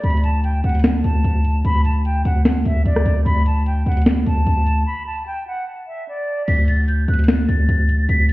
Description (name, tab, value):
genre	hip hop, trap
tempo	149 BPM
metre	4/4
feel	half-time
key	D major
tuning	A4 = 440 Hz
part	silver concert flute	melody	0.0-8.3 s	D5 to B6	-24 LUFS	equal	tape echo
part	distorted 808-style bass	bass	0.0-8.3 s	D2	-16 LUFS	equal	distortion
part	trap drum kit	drums	0.0-8.3 s	crash cymbal, hi-hat, rim click, snare drum	-18 LUFS	equal	none
room	light reverb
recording	heard muffled through a wall, stone room reverb, EQ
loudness	-16 LUFS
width	side -18 dB against mid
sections	0.0-6.5 A section; 6.5-8.3 B section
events	break 4.9-6.5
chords	0.0 D5